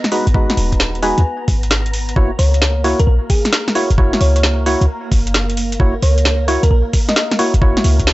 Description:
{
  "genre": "UK garage, two-step garage",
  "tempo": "132 BPM",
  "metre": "4/4",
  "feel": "swing 67% on 16ths",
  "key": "unclear",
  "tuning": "A4 = 440 Hz",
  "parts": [
    { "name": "soft string machine", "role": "sustained chords", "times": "0.0-8.1 s", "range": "A#3 to A#5", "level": "-27 LUFS", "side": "right 1 dB", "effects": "phaser, ensemble chorus, sidechain pumping" },
    { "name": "garage drum kit", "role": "drums", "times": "0.0-8.1 s", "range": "hi-hat, snare drum", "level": "-18 LUFS", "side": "equal", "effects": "overdrive, studio ambience" },
    { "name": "percussive organ stab", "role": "stabs", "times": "0.1-8.1 s", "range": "G#3 to C#5", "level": "-19 LUFS", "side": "equal", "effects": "analog chorus" },
    { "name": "short 808-style bass", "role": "bass", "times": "0.3-8.1 s", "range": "D#1 to D#2", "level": "-15 LUFS", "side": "equal", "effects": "none" },
    { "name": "electronic kick drum", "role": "drums", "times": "0.3-8.1 s", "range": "none", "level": "-16 LUFS", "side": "equal", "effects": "overdrive, studio ambience" },
    { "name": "thumb-piano-like synth pluck", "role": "melody", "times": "1.0-7.3 s", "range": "G#4 to G#5", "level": "-24 LUFS", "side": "equal", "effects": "wide subtle chorus, cassette tape, tape echo" }
  ],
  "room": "little or no reverb",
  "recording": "dry, gritty hardware recording, cassette tape, nothing above 7.9 kHz",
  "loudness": "-13 LUFS",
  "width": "side -18 dB against mid",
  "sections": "0.0-8.1 A section",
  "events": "none",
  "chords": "0.0 G#m7; 2.2 F#7"
}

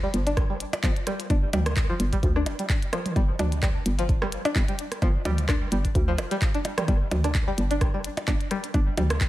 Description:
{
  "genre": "minimal techno",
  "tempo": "129 BPM",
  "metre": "4/4",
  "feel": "swing 55% on 16ths",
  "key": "unclear",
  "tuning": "A4 = 440 Hz",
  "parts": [
    { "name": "string-like resonator pluck", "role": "riff", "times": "0.0-9.0 s", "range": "F3 to D4", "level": "-30 LUFS", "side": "left 1 dB", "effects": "chorus, phaser, sidechain pumping, dub echo" },
    { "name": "hollow knocking FM bass", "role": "bass", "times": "0.0-9.3 s", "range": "F1 to D2", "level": "-27 LUFS", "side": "equal", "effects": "sidechain pumping" },
    { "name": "minimal click drum kit", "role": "drums", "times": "0.1-9.3 s", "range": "handclaps, hi-hat", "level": "-34 LUFS", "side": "left 1 dB", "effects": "none" },
    { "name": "electronic kick drum", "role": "drums", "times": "0.4-9.3 s", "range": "none", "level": "-24 LUFS", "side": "equal", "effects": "none" },
    { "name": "minimal click drum kit", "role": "percussion", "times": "0.4-9.2 s", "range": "percussion blips, rim click, toms", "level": "-31 LUFS", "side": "right 2 dB", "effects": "dub echo" }
  ],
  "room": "light reverb, digital ambience",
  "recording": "echo-heavy mix",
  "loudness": "-22 LUFS",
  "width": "side -16 dB against mid",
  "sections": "0.0-9.3 A section",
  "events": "none",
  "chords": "0.0 G5"
}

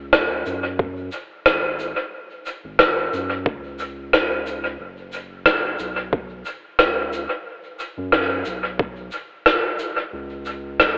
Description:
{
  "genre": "ambient dub",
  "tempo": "90 BPM",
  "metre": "4/4",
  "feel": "swing 53% on 16ths",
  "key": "unclear",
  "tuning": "A4 = 439 Hz",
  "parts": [
    { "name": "soft dub sub bass", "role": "bass", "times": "0.0-11.0 s", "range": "F#1 to F#2", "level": "-33 LUFS", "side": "equal", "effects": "tube saturation" },
    { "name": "rim click and shaker", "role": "drums", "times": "0.1-10.9 s", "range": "none", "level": "-22 LUFS", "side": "equal", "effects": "cassette tape, dub echo" },
    { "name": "electronic kick drum", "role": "drums", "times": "0.8-8.9 s", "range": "none", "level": "-26 LUFS", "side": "equal", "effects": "cassette tape" }
  ],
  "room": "light reverb",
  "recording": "home recording on cassette, telephone sound",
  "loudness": "-19 LUFS",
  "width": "side -36 dB against mid",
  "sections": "0.0-11.0 A section",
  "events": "none",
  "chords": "none"
}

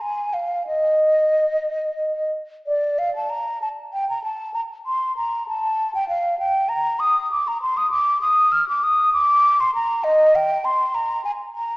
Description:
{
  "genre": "classical, baroque-style fantasia for unaccompanied flute",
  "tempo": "65 BPM (dotted quarters)",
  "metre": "6/8",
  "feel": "rubato",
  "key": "Bb major",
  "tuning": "A4 = 438 Hz",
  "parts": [
    { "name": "mellow hollow concert flute", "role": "solo", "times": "0.0-11.8 s", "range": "D5 to F6", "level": "-18 LUFS", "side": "equal", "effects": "none" }
  ],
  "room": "wet recital hall reverb, RT60 1.7 s",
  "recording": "recorded in a church or concert hall, AM radio sound",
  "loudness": "-18 LUFS",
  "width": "side -22 dB against mid",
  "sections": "0.0-2.7 A section; 2.7-11.8 A section",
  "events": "none",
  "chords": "none"
}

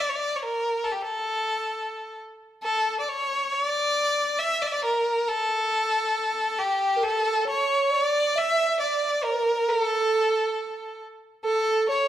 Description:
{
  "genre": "Arabic maqam ensemble",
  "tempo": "free time",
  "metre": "none",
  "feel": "none",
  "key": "unclear",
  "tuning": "A4 = 440 Hz",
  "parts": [
    { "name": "clear violin", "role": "melody", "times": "0.0-12.1 s", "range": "G4 to E5", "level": "-24 LUFS", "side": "left 1 dB", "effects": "none" },
    { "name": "warbly nostalgic lead", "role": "second line", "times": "7.0-12.1 s", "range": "A4 to E5", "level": "-25 LUFS", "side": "right 3 dB", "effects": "chorus" }
  ],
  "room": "wet recital hall reverb, RT60 1.6 s",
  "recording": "none",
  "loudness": "-22 LUFS",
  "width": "side -11 dB against mid",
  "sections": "0.0-12.1 A section",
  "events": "none",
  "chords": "none"
}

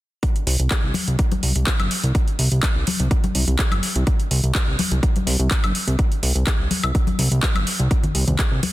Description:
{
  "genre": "progressive house",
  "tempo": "125 BPM",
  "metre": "4/4",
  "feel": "straight",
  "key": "unclear",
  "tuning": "A4 = 440 Hz",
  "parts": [
    { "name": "deep house drum kit", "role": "drums", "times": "0.2-8.7 s", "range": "handclaps, hi-hat, woodblock", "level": "-24 LUFS", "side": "equal", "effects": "overdrive" },
    { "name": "electronic kick drum", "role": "drums", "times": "0.2-8.5 s", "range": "none", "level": "-20 LUFS", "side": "equal", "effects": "overdrive" },
    { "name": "fat analog bass", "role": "bass", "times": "0.5-8.6 s", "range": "G1 to C2", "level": "-20 LUFS", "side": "equal", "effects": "sidechain pumping" },
    { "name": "congas", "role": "percussion", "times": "0.9-8.7 s", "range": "none", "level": "-26 LUFS", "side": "left 3 dB", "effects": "sidechain pumping on perc" }
  ],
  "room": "little or no reverb",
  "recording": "dense, heavily limited modern master",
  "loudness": "-18 LUFS",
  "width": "side -16 dB against mid",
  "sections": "0.2-8.7 A section",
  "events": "none",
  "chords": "none"
}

